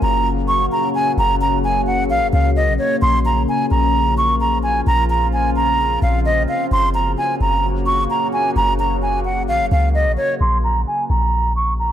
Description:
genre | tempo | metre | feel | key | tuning
hip hop, trap | 130 BPM | 4/4 | half-time | unclear | A4 = 440 Hz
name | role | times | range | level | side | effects
wooden flute | melody | 0.0-11.9 s | Db5 to Db6 | -18 LUFS | right 1 dB | low-pass filter
deep dark ambient pad | sustained chords | 0.0-10.4 s | Db3 to Gb4 | -22 LUFS | left 2 dB | chorus, built-in reverb
warm 808-style bass | bass | 0.0-11.9 s | Gb1 to Db2 | -19 LUFS | equal | none
room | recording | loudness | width
light reverb, studio reverb | dry, gritty hardware recording, transformer saturation | -15 LUFS | side -10 dB against mid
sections
0.0-10.4 A section; 10.4-11.9 B section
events
filter sweep on flute 10.4-11.9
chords
0.0 Gb; 3.0 Bbm; 6.7 Gb; 10.4 N.C.

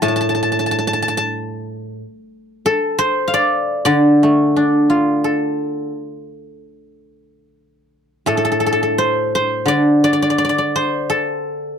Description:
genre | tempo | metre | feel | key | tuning
chinese traditional | 79-92 BPM | 4/4 | rubato | D yu mode | A4 = 440 Hz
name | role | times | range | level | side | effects
guzheng | solo | 0.0-11.8 s | A2 to A5 | -15 LUFS | equal | none
room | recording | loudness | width
little or no reverb | dry, close 1970s-style studio recording | -14 LUFS | side -7 dB against mid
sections
0.0-8.3 A section; 8.3-11.8 B section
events
none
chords
none

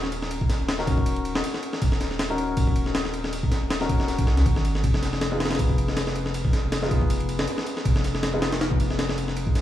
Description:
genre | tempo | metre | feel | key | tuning
drum and bass, jungle | 159 BPM | 4/4 | swing 55% on 16ths | Eb minor | A4 = 439 Hz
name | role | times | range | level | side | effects
dark baby grand piano | stabs | 0.0-9.6 s | Cb4 to Bb4 | -30 LUFS | left 3 dB | vintage 12-bit sampler grit, dub echo
saturated sub bass | bass | 0.0-9.5 s | Eb1 to Db2 | -28 LUFS | equal | none
breakbeat sampler-style drum kit | drums | 0.0-9.6 s | kick drum, ride cymbal, snare drum | -24 LUFS | equal | none
room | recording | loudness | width
digital ambience | vinyl crackle, studio reverb | -22 LUFS | side -12 dB against mid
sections
0.0-9.6 A section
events
none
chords
0.0 Ebm7; 4.8 Fm7b5

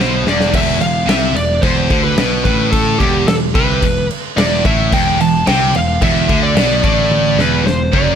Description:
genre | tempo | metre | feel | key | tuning
heavy metal | 110 BPM | 4/4 | straight | E minor | A4 = 439 Hz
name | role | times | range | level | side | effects
high-gain lead guitar | melody | 0.0-8.2 s | G4 to A5 | -18 LUFS | equal | distortion, ping-pong delay
heavy high-gain guitar | riff | 0.0-8.2 s | E2 to D3 | -20 LUFS | left 16 dB | distortion
heavy high-gain guitar | riff | 0.0-0.5, 4.9-8.2 s | E2 to D3 | -22 LUFS | equal | distortion
high-gain distorted guitar | riff | 0.0-8.2 s | E2 to D3 | -20 LUFS | right 12 dB | distortion
picked electric bass | bass | 0.0-8.2 s | E1 to D2 | -18 LUFS | left 1 dB | none
big rock drum kit | drums | 0.0-8.1 s | crash cymbal, kick drum, snare drum, toms | -17 LUFS | equal | none
room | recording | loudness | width
small room reverb | none | -11 LUFS | side -8 dB against mid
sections
0.5-8.2 A section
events
drum fill 0.0-0.5, 7.1-8.2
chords
0.0 E5

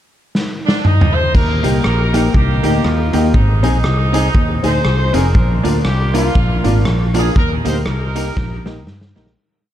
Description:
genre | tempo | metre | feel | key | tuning
ska | 120 BPM | 4/4 | swing 58% on 8ths | Eb major | A4 = 441 Hz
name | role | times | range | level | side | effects
raw garage drum kit | drums | 0.3-9.4 s | crash cymbal, hi-hat, kick drum, rim click, snare drum, toms | -17 LUFS | equal | none
clear horn section | melody | 0.6-8.8 s | Ab3 to C5 | -21 LUFS | right 1 dB | dub echo
fingered electric bass | bass | 1.3-9.3 s | F1 to G2 | -16 LUFS | equal | none
vintage hollow-body jazz guitar | accompaniment | 1.6-9.3 s | Bb3 to Ab4 | -22 LUFS | right 4 dB | none
clear upright piano | stabs | 1.6-9.3 s | Bb3 to Bb4 | -23 LUFS | left 5 dB | dub echo
room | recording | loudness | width
moderate club reverb, RT60 0.8 s | dark, warm production | -12 LUFS | side -11 dB against mid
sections
0.0-1.3 pickup bar; 1.3-9.4 A section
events
drum fill 0.3-1.3, 8.4-9.4; fade-out 7.4-9.4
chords
0.0 N.C.; 1.3 Eb; 3.3 Ab; 5.4 Bb; 7.4 Eb

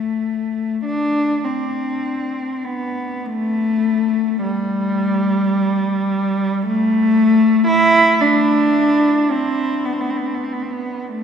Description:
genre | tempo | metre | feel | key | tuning
classical, free, expressive piece for unaccompanied cello | 32-59 BPM | 3/4 | rubato | A minor | A4 = 441 Hz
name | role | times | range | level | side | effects
warm cello | solo | 0.0-11.2 s | G3 to E4 | -16 LUFS | equal | none
room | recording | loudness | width
wet cathedral reverb, RT60 6.5 s | heard from further back in the room | -16 LUFS | side -7 dB against mid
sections
0.8-11.2 A section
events
none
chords
none

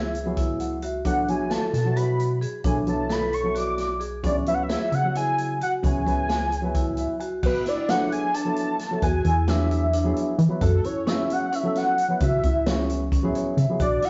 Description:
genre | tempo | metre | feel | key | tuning
progressive instrumental, band music in an uneven meter | 264 BPM (eighths) | 7/8 | straight | B dorian | A4 = 440 Hz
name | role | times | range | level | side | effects
unison lead | melody | 0.0-14.1 s | A4 to D6 | -29 LUFS | equal | none
dark baby grand piano | accompaniment | 0.0-13.8 s | F#3 to G#5 | -32 LUFS | equal | none
vibraphone with medium hard mallets | arpeggios | 0.0-14.1 s | C#4 to A4 | -31 LUFS | equal | none
plucky analog bass | bass | 0.0-14.0 s | B1 to E3 | -28 LUFS | equal | none
swinging big-band drum kit | drums | 0.1-14.1 s | crash cymbal, hi-hat, kick drum, snare drum | -31 LUFS | equal | none
egg shaker | percussion | 0.1-7.2, 13.8-14.0 s | none | -58 LUFS | equal | none
room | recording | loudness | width
moderate stone room reverb, RT60 1.4 s | rough rehearsal-room recording, nothing above 7.7 kHz | -24 LUFS | mono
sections
0.0-7.4 A section; 7.4-14.1 B section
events
grand piano fill 0.4-1.1, 6.7-7.4, 13.1-13.8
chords
0.0 C#m7; 1.1 Bm7; 4.2 C#m7; 7.4 Bm7; 9.0 E7; 10.6 F#m7; 12.2 C#m

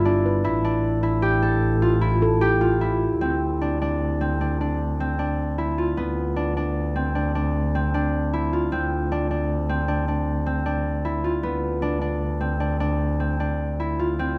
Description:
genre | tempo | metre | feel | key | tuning
contemporary instrumental, chamber music in an uneven meter | 153 BPM | 7/4 | straight | D dorian | A4 = 441 Hz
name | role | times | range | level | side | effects
concert harp | arpeggios | 0.0-14.4 s | B3 to A4 | -26 LUFS | equal | none
warm double bass | bass | 0.0-14.4 s | G1 to D2 | -27 LUFS | equal | none
handpan | texture | 0.3-3.4 s | A4 to B4 | -33 LUFS | equal | none
room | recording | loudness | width
little or no reverb | close, detailed microphones | -24 LUFS | mono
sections
0.0-3.2 A section; 3.2-14.4 B section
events
none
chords
0.5 A5; 3.2 D7(no3); 6.0 Dm13; 8.7 Csus2/D; 11.4 Dm13

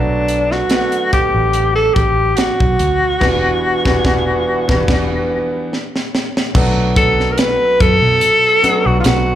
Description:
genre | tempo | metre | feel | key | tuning
lush 1970s-style soul | 72 BPM | 4/4 | swing 54% on 16ths | unclear | A4 = 440 Hz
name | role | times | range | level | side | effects
breathy tenor saxophone | melody | 0.0-9.4 s | D4 to B4 | -14 LUFS | equal | slapback echo
clear baby grand piano | accompaniment | 0.0-9.4 s | D3 to F#5 | -21 LUFS | left 1 dB | slapback echo
vintage muted fingered electric bass | bass | 0.0-9.4 s | E1 to B2 | -18 LUFS | equal | none
tight funk drum kit | drums | 0.3-9.3 s | crash cymbal, hi-hat, kick drum, snare drum | -18 LUFS | right 1 dB | none
room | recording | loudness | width
small room ambience | live gig heard through the venue's PA, club reverb | -12 LUFS | side -11 dB against mid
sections
0.0-6.6 A section; 6.6-9.4 B section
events
band accent 3.2-6.6; drum fill 5.7-6.6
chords
0.0 Bm7; 3.2 Em7; 5.7 N.C.; 6.6 Bm7

